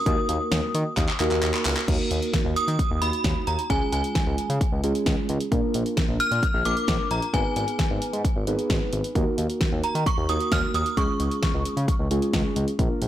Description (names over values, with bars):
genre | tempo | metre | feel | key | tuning
synth-pop | 132 BPM | 4/4 | straight | Eb minor | A4 = 440 Hz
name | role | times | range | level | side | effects
synth chime | melody | 0.0-12.5 s | Ab5 to F6 | -28 LUFS | right 1 dB | ensemble chorus, phaser, tremolo, digital delay
muted felt-like synth keys | accompaniment | 0.1-13.1 s | Ab3 to Cb5 | -28 LUFS | right 1 dB | chorus
smooth synth bass | bass | 0.1-13.1 s | Ab1 to Eb3 | -27 LUFS | equal | tube saturation
pop drum kit | drums | 0.1-13.1 s | crash cymbal, handclaps, hi-hat, kick drum, snare drum | -26 LUFS | equal | none
room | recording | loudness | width
light reverb | blown-out, overdriven recording, overdrive | -22 LUFS | side -12 dB against mid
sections
0.0-1.9 A section; 1.9-13.1 B section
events
drum fill 1.0-1.9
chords
0.1 Ebm; 3.7 Db; 5.5 Bb; 7.3 Abm; 9.2 Ebm; 11.0 Db